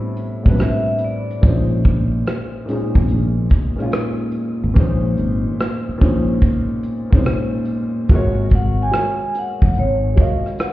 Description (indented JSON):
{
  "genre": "lo-fi hip hop",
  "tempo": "72 BPM",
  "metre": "4/4",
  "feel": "swing 66% on 16ths",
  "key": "Bb minor",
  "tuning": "A4 = 435 Hz",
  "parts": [
    { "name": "dark upright piano", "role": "accompaniment", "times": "0.0-10.7 s", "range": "A2 to Eb5", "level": "-21 LUFS", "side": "left 1 dB", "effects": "none" },
    { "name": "vintage brush drum kit", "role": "drums", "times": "0.2-10.7 s", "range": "hi-hat, kick drum, rim click", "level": "-16 LUFS", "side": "equal", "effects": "none" },
    { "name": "sustaining fretless electric bass", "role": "bass", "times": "0.5-10.2 s", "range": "Gb1 to C2", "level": "-19 LUFS", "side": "equal", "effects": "analog chorus" },
    { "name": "vibraphone with medium mallets", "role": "melody", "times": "0.6-1.5, 8.6-10.7 s", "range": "Db5 to Ab5", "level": "-23 LUFS", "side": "right 1 dB", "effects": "none" }
  ],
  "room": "little or no reverb",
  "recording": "heard muffled through a wall, stone room reverb, EQ",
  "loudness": "-15 LUFS",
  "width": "side -16 dB against mid",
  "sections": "0.0-8.1 A section; 8.1-10.7 B section",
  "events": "none",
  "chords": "0.0 Am11; 1.4 Bbm11; 8.1 Ab9sus4"
}